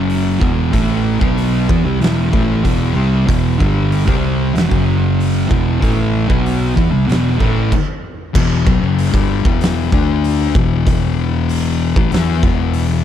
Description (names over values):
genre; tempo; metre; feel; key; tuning
stoner and doom metal; 95 BPM; 4/4; straight; E minor; A4 = 441 Hz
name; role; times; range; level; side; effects
thick fuzz guitar; riff; 0.0-13.0 s; E2 to E4; -18 LUFS; left 9 dB; distortion
thick fuzz guitar; riff; 0.0-7.7 s; E2 to C4; -18 LUFS; right 9 dB; distortion
fingered electric bass; bass; 0.0-13.0 s; E1 to E2; -19 LUFS; right 1 dB; overdrive
oversized low-tuned drum kit; drums; 0.1-12.9 s; crash cymbal, hi-hat, kick drum, snare drum; -18 LUFS; equal; none
room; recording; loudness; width
studio ambience; none; -13 LUFS; side -10 dB against mid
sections
0.0-8.3 A section; 8.3-13.0 B section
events
stop 7.7-8.3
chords
0.4 Em; 4.7 F#5; 5.5 E5; 8.3 Em; 9.9 D5; 10.5 E5